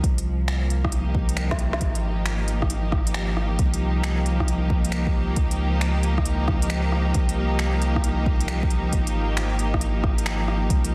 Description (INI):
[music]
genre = future garage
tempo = 135 BPM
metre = 4/4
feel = swing 66% on 16ths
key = C phrygian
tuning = A4 = 440 Hz
[part]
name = bright symphonic string section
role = sustained chords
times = 0.0-10.9 s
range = F3 to G4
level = -30 LUFS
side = equal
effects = sidechain pumping
[part]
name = warm sub bass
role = bass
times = 0.0-10.9 s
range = Ab1 to Db2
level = -27 LUFS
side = equal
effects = sidechain pumping
[part]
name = electronic kick drum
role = drums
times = 0.0-10.8 s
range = none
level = -26 LUFS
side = equal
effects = none
[part]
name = organic electronic drum kit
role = drums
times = 0.0-10.9 s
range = finger snaps, hi-hat, rim click, snare drum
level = -33 LUFS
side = equal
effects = soft clipping on snare
[sound]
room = little or no reverb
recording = dense, heavily limited modern master, vinyl crackle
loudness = -23 LUFS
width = mono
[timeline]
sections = 0.0-10.9 A section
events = drum fill 1.5-1.8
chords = 0.0 Cm7; 1.8 Ab5; 3.6 Cm7; 5.4 Db; 7.1 Cm7; 8.9 Ab5